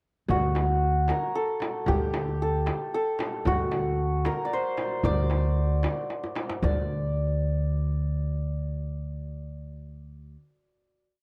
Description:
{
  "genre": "Persian modal ensemble",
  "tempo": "114 BPM",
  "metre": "3/4",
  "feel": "straight",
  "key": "D dastgah homayun",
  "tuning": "A4 = 440 Hz",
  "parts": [
    { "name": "santur", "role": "melody", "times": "0.3-10.4 s", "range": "F#4 to D5", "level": "-31 LUFS", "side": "equal", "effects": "none" },
    { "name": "upright bass", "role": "bass", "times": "0.3-10.3 s", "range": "D2", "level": "-30 LUFS", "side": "equal", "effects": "none" },
    { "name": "frame drum", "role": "percussion", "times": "0.3-6.9 s", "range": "none", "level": "-38 LUFS", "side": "equal", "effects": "none" },
    { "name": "tombak", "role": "percussion", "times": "0.3-6.9 s", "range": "none", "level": "-36 LUFS", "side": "equal", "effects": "none" }
  ],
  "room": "little or no reverb",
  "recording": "dry, close 1970s-style studio recording",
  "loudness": "-27 LUFS",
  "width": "mono",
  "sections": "0.3-6.6 A section; 6.6-9.8 final note",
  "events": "drum fill 6.1-6.6",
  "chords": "none"
}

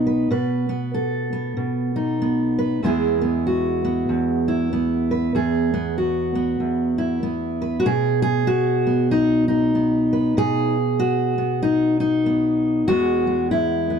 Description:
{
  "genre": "folk, solo fingerstyle acoustic guitar",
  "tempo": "95 BPM",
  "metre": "4/4",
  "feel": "swing 61% on 8ths",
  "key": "E major",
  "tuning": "A4 = 439 Hz",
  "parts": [
    { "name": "fingerpicked steel-string acoustic guitar", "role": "solo", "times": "0.0-14.0 s", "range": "E2 to B4", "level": "-18 LUFS", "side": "equal", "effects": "none" }
  ],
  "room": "light reverb",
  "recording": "dark, warm production",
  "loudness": "-18 LUFS",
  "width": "side -7 dB against mid",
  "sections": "0.0-7.9 A section; 7.9-14.0 B section",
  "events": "none",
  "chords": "0.0 B; 2.8 E; 7.9 N.C.; 12.9 E"
}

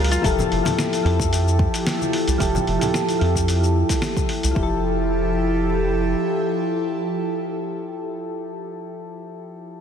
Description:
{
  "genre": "sunset chillout",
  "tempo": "111 BPM",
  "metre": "4/4",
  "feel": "straight",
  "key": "F major",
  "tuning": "A4 = 440 Hz",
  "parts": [
    { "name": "soft electric-piano-like synth keys", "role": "accompaniment", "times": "0.0-9.8 s", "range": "F3 to Bb4", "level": "-25 LUFS", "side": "moving between left 5 dB and right 6 dB", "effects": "chorus, auto-pan, tape echo" },
    { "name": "round analog bass", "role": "bass", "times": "0.0-6.1 s", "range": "F1 to F2", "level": "-22 LUFS", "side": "equal", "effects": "none" },
    { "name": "dusty soul sampler-style drum kit", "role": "drums", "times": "0.0-4.5 s", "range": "hi-hat, shaker, snare drum", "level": "-27 LUFS", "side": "left 1 dB", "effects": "none" },
    { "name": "airy breathy pad", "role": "sustained chords", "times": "1.0-8.5 s", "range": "F3 to A4", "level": "-24 LUFS", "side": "equal", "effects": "chorus, vintage 12-bit sampler grit" },
    { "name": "electronic kick drum", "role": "drums", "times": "0.2-4.7 s", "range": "none", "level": "-24 LUFS", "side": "equal", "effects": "none" },
    { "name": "congas", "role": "percussion", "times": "0.4-4.3 s", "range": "none", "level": "-30 LUFS", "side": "left 2 dB", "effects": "none" }
  ],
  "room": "moderate lush hall reverb, RT60 2.6 s",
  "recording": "heavily compressed radio sound, multiband compression",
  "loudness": "-19 LUFS",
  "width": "side -8 dB against mid",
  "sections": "0.2-4.6 A section; 4.6-8.9 B section",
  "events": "filter sweep on analog synth pad 0.2-4.6",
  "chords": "0.2 Fmaj9"
}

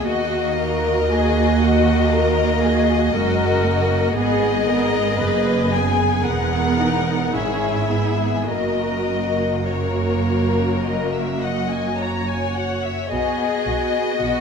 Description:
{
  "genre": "classical, slow romantic movement for string orchestra",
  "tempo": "51-60 BPM",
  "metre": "4/4",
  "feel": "rubato",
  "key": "unclear",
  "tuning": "A4 = 440 Hz",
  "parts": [
    { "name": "warm studio violin section", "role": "melody", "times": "0.0-14.4 s", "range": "C#5 to A#5", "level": "-24 LUFS", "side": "left 7 dB", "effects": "none" },
    { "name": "warm studio violin section", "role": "second line", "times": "0.0-14.4 s", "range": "F#4 to D#5", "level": "-25 LUFS", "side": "left 3 dB", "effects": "none" },
    { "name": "warm studio viola section", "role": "accompaniment", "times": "0.0-14.4 s", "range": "G#3 to A#4", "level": "-22 LUFS", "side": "right 3 dB", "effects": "none" },
    { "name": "rich studio cello section", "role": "bass", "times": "0.1-14.3 s", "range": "D#2 to B2", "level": "-27 LUFS", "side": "right 3 dB", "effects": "none" },
    { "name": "warm studio double bass section", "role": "bass", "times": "0.1-14.3 s", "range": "E1 to D#2", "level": "-25 LUFS", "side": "right 4 dB", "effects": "none" }
  ],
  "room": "wet concert hall reverb, RT60 1.8 s",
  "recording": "none",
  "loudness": "-17 LUFS",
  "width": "side -6 dB against mid",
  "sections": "0.0-14.4 A section",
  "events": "none",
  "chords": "0.1 D#m; 4.2 G#m; 6.2 Emaj7; 8.5 F#; 13.1 B"
}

